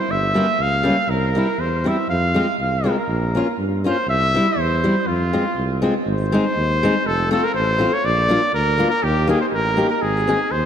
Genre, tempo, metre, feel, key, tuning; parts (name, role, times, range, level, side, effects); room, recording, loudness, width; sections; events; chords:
alpine folk, alpine dance band; 121 BPM; 2/4; swing 54% on 8ths; F harmonic minor, Ab major from 6.1 s; A4 = 439 Hz
clear trumpet; melody; 0.0-10.7 s; F4 to F5; -20 LUFS; equal; diffuse ambient delay
mellow tuba; bass; 0.1-10.7 s; F1 to G2; -22 LUFS; right 1 dB
fingerpicked steel-string acoustic guitar; accompaniment; 0.3-10.4 s; G3 to Ab4; -21 LUFS; left 1 dB
wet lush hall reverb, RT60 1.8 s, small room ambience; dreamy mix soaked in reverb; -17 LUFS; side -8 dB against mid
0.0-6.1 A section; 6.1-10.7 B section
0.1 Gdim; 1.1 C; 2.1 Fm; 3.1 Bbm; 4.1 C; 5.1 Fm; 6.1 Ab; 7.1 F; 8.0 Bb; 9.0 Eb; 10.0 Ab